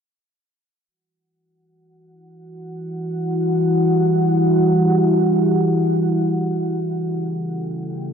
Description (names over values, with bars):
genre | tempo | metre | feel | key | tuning
trip hop | free time | none | none | E dorian | A4 = 440 Hz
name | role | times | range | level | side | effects
deep dark ambient pad | sustained chords | 2.7-8.1 s | C#4 to G5 | -17 LUFS | equal | chorus, built-in reverb
room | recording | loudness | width
wet plate reverb, RT60 3.1 s | dreamy mix soaked in reverb | -16 LUFS | side -7 dB against mid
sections
0.9-8.1 A section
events
filter sweep on ambient pad 0.9-8.1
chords
0.9 Emadd9; 6.7 A7